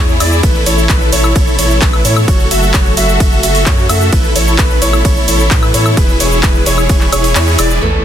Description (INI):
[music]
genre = EDM, festival progressive house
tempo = 130 BPM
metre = 4/4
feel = straight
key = A major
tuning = A4 = 441 Hz
[part]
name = dark studio string section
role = sustained chords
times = 0.0-8.0 s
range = B2 to A4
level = -21 LUFS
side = left 3 dB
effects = sidechain pumping
[part]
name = warm grand piano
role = arpeggios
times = 0.0-7.8 s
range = B4 to E5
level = -20 LUFS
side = right 2 dB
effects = sidechain pumping, digital delay
[part]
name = dense compressed supersaw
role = riff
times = 0.0-7.8 s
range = E4 to E5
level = -16 LUFS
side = equal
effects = sidechain pumping, digital delay
[part]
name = saturated sub bass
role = bass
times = 0.0-8.0 s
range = E1 to A2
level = -15 LUFS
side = equal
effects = sidechain pumping
[part]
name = house drum kit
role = drums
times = 0.1-8.0 s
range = cabasa, crash cymbal, handclaps, hi-hat, ride cymbal, woodblock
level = -16 LUFS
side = equal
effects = overdrive, low-pass filter on cymbals, low-pass filter on perc, low-pass filter on hats, low-pass filter on snare, low-pass filter on room
[part]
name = electronic kick drum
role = drums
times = 0.4-7.0 s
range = none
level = -13 LUFS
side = equal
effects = overdrive
[part]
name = fingerpicked steel-string acoustic guitar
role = accompaniment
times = 7.8-8.0 s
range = E3 to A4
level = -16 LUFS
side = right 4 dB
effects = sidechain pumping
[part]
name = sub drop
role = sound effects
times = 7.8-8.0 s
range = none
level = -17 LUFS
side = equal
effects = none
[sound]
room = little or no reverb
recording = dense, heavily limited modern master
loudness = -8 LUFS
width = side -10 dB against mid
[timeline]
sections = 0.0-7.8 A section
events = drop 0.0-7.8; kick drops out 7.4-7.8; band accent 7.4; impact 7.8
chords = 0.4 Asus2; 2.3 F#m; 4.1 Asus2; 6.0 E